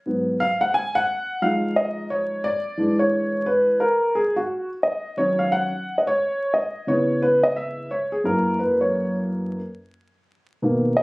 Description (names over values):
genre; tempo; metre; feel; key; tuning
hip hop; 88 BPM; 4/4; swing 62% on 16ths; unclear; A4 = 440 Hz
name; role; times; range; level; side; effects
dark upright piano; solo; 0.1-11.0 s; F#2 to G#5; -20 LUFS; equal; none
room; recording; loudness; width
moderate studio reverb, RT60 0.6 s; recorded on a phone in the room, studio ambience, vinyl crackle; -20 LUFS; side -25 dB against mid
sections
0.0-11.0 A section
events
upright piano solo 0.0-11.0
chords
0.0 G#m7; 1.4 Fm7; 2.8 E7; 4.2 D#m7; 6.9 C#m7; 8.2 F#7; 9.6 Bmaj7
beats
0.06 0.74 | 1.42 2.11 2.79 3.47 | 4.15 4.83 5.51 6.20 | 6.88 7.56 8.24 8.92 | 9.61 10.29 10.97